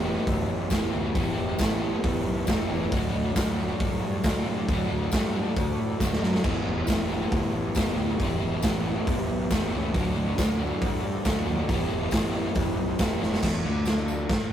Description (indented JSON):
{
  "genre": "garage rock duo or trio",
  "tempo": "137 BPM",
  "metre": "4/4",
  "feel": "straight",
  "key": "E minor",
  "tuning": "A4 = 439 Hz",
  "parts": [
    { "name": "crunchy overdriven guitar", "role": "riff", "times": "0.0-14.3 s", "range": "E2 to G4", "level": "-29 LUFS", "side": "equal", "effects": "harmonic tremolo" },
    { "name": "fuzz fingered electric bass", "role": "bass", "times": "0.0-14.5 s", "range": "E1 to C3", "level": "-30 LUFS", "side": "equal", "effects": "overdrive" },
    { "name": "raw garage drum kit", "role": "drums", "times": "0.3-14.4 s", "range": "crash cymbal, hi-hat, kick drum, snare drum", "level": "-27 LUFS", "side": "equal", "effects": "none" },
    { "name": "tambourine", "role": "percussion", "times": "0.7-14.2 s", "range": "none", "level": "-41 LUFS", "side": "left 3 dB", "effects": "none" }
  ],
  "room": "light reverb",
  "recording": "rough rehearsal-room recording, tube saturation",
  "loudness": "-24 LUFS",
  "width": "side -10 dB against mid",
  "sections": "0.0-13.4 A section; 13.4-14.5 B section",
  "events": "drum fill 6.0-6.4, 13.2",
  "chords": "0.0 Em; 2.9 D; 6.4 Em; 9.9 D; 11.7 Em; 13.4 N.C."
}